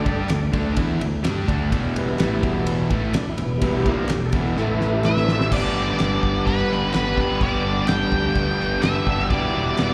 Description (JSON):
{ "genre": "classic rock", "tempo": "127 BPM", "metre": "4/4", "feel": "straight", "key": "unclear", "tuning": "A4 = 438 Hz", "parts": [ { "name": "tonewheel organ", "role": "sustained chords", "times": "0.0-9.9 s", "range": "D3 to F5", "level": "-30 LUFS", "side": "equal", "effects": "chorus vibrato, fast rotary speaker" }, { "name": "crunchy overdriven guitar", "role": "riff", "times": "0.0-9.9 s", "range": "E2 to G4", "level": "-28 LUFS", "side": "equal", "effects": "slapback echo" }, { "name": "distorted electric guitar", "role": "riff", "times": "0.0-9.9 s", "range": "E2 to G4", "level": "-30 LUFS", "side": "equal", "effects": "distortion, slapback echo" }, { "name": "picked electric bass", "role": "bass", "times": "0.0-9.9 s", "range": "E1 to G2", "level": "-29 LUFS", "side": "equal", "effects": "none" }, { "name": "damped 70s drum kit", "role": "drums", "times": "0.1-9.9 s", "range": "crash cymbal, kick drum, ride cymbal, snare drum", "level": "-28 LUFS", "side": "equal", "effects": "none" }, { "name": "group handclap", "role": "percussion", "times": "0.3-9.9 s", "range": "none", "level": "-42 LUFS", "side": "equal", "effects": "none" }, { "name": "octave-fuzz lead guitar", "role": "melody", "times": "5.1-9.9 s", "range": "B4 to G5", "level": "-27 LUFS", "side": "equal", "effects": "distortion, slapback echo, digital delay" }, { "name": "biting overdriven guitar", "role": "riff", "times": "5.5-9.9 s", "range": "E2 to G3", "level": "-34 LUFS", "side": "equal", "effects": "none" } ], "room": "moderate plate reverb, RT60 1.4 s, small room ambience", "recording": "live gig heard through the venue's PA, recital hall reverb", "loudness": "-21 LUFS", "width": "mono", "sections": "0.0-5.5 A section; 5.5-9.9 B section", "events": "tonewheel organ solo 0.0-5.5; drum fill 4.6-5.5", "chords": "0.0 D5; 1.7 Em; 4.6 A5; 5.5 G; 9.3 Em7", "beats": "0.31 0.78 1.25 | 1.73 2.20 2.67 3.15 | 3.62 4.09 4.57 5.04 | 5.51 5.99 6.46 6.94 | 7.41 7.89 8.36 8.83 | 9.31 9.78" }